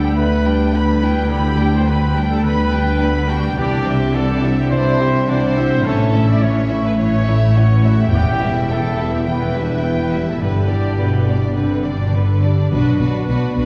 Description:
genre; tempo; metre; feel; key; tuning
cinematic, heroic adventure film score; 105 BPM; 4/4; straight; unclear; A4 = 440 Hz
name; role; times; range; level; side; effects
rich chamber violin section; melody; 0.0-13.7 s; B4 to B5; -30 LUFS; equal; none
clear clarinet; second line; 0.0-13.7 s; A3 to F#4; -30 LUFS; equal; none
rich symphonic violin section; second line; 0.0-13.7 s; B3 to F#4; -34 LUFS; equal; none
silver concert flute; second line; 0.0-13.7 s; D5 to G5; -33 LUFS; equal; none
rich symphonic viola section; accompaniment; 0.0-13.7 s; D3 to D4; -29 LUFS; equal; none
dark French horn section; sustained chords; 0.0-13.7 s; F#3 to E4; -30 LUFS; equal; none
concert harp; arpeggios; 0.0-13.7 s; E2 to G4; -27 LUFS; equal; none
bright trumpet section; stabs; 0.0-12.1 s; F#4 to D5; -26 LUFS; equal; none
rich symphonic cello section; bass; 0.0-13.6 s; D2 to D3; -22 LUFS; equal; none
warm symphonic double bass section; bass; 0.0-13.7 s; E1 to D2; -22 LUFS; equal; none
timpani; percussion; 8.1-8.9, 12.7-13.5 s; E2 to B2; -25 LUFS; equal; none
room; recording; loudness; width
wet scoring stage reverb, RT60 1.9 s; heard from further back in the room, nothing above 10.6 kHz; -17 LUFS; mono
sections
0.0-12.7 A section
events
none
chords
0.0 G/D; 3.6 Cadd9; 5.8 A; 8.1 Em; 10.4 G; 12.7 Bm

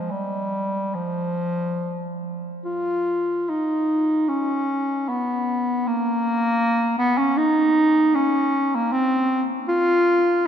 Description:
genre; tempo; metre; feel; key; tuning
classical, free, expressive piece for unaccompanied bass clarinet; free time; none; none; unclear; A4 = 440 Hz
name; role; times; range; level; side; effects
warm bass clarinet; solo; 0.0-10.5 s; F3 to F4; -19 LUFS; equal; none
room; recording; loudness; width
wet cathedral reverb, RT60 4.8 s; dark, warm production; -19 LUFS; side -9 dB against mid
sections
0.0-10.5 A section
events
none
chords
none

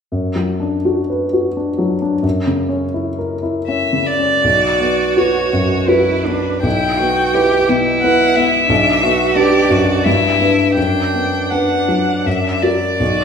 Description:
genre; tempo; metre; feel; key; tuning
classical, slow romantic movement for piano quartet; 76-90 BPM; 3/4; rubato; B minor; A4 = 440 Hz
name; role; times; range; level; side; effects
warm grand piano; accompaniment; 0.1-13.2 s; B1 to B4; -16 LUFS; left 1 dB; none
rich violin; melody; 3.7-13.2 s; B4 to G5; -17 LUFS; left 1 dB; none
rich cello; second line; 4.4-13.2 s; D4 to G4; -19 LUFS; right 5 dB; none
room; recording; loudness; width
wet stone room reverb, RT60 1.4 s; minimal, uncompressed stereo recording; -13 LUFS; side -6 dB against mid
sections
0.1-4.4 A section; 4.4-13.2 B section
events
none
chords
0.1 Bm/F#; 2.2 F#7; 4.4 Bm; 6.6 Em/B; 8.7 Bm; 10.1 G6; 10.8 Bm/F#; 12.3 F#

